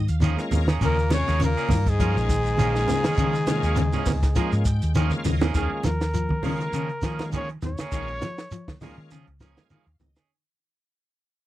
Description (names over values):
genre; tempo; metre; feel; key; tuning
afrobeat; 101 BPM; 4/4; swing 55% on 16ths; unclear; A4 = 440 Hz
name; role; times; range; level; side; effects
bright tonewheel organ; accompaniment; 0.0-10.3 s; Ab3 to Bb5; -33 LUFS; left 1 dB; slow rotary speaker, overdrive, chorus vibrato
electric guitar at the edge of break-up; arpeggios; 0.0-10.2 s; C3 to F3; -32 LUFS; left 7 dB; tape echo
hollow-body short-scale fingered electric bass; bass; 0.0-10.1 s; Bb1 to Eb3; -25 LUFS; equal; none
compact cocktail drum kit; drums; 0.1-10.3 s; hi-hat, kick drum, snare drum; -28 LUFS; equal; none
shekere; percussion; 0.1-10.3 s; none; -31 LUFS; right 2 dB; none
electric guitar at the edge of break-up; stabs; 0.2-10.3 s; F3 to Ab4; -33 LUFS; right 9 dB; none
congas; percussion; 0.2-10.3 s; none; -29 LUFS; right 3 dB; none
growling baritone saxophone; second line; 0.8-5.0 s; Ab2 to Db3; -35 LUFS; left 13 dB; none
breathy trumpet; melody; 0.9-8.8 s; Ab4 to Db5; -29 LUFS; equal; none
bright trombone; second line; 0.9-5.0 s; Ab3 to Db4; -35 LUFS; right 2 dB; none
room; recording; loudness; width
little or no reverb; dry, close 1970s-style studio recording; -21 LUFS; side -15 dB against mid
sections
0.0-5.5 A section; 5.5-10.3 B section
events
tonewheel organ fill 0.0-0.8, 4.4-5.5, 9.1-10.3; drum fill 5.0-5.5; fade-out 5.5-10.3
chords
0.0 Eb9sus4